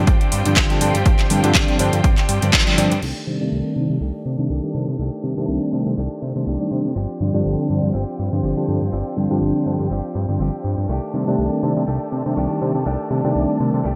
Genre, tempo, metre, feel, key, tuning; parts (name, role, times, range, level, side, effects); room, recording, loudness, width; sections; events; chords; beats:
filtered disco house; 122 BPM; 4/4; swing 55% on 16ths; C dorian; A4 = 442 Hz
tine electric piano; accompaniment; 0.0-13.8 s; D3 to D4; -24 LUFS; equal; phaser, sidechain pumping, low-pass filter
rich studio violin section; sustained chords; 0.0-14.0 s; F4 to A5; -35 LUFS; equal; sidechain pumping, low-pass filter
direct-recorded clean electric guitar; riff; 0.0-14.0 s; Eb3 to G4; -30 LUFS; equal; subtle chorus, sidechain pumping, low-pass filter
fat analog bass; bass; 0.0-14.0 s; G1 to C3; -25 LUFS; equal; sidechain pumping, low-pass filter
electronic kick drum; drums; 0.1-2.6 s; -19 LUFS; equal; overdrive
house drum kit; drums; 0.1-3.1 s; crash cymbal, handclaps, hi-hat; -23 LUFS; equal; sidechain pumping on hats, sidechain pumping on cymbals, gated reverb
tube shaker; percussion; 0.1-3.0, 10.9-14.0 s; barely audible
light reverb, digital ambience; bright 1980s-style digital production; -20 LUFS; mono
0.0-3.0 A section; 3.0-14.0 B section
band accent 2.5; filter sweep 3.0-14.0
0.0 G7sus4; 3.0 Cm69; 7.0 G7sus4; 10.9 Cm69
0.07 0.57 | 1.06 1.55 2.04 2.53 | 3.02 3.52 4.01 4.50 | 4.99 5.48 5.97 6.47 | 6.96 7.45 7.94 8.43 | 8.93 9.42 9.91 10.40 | 10.89 11.38 11.88 12.37 | 12.86 13.35 13.84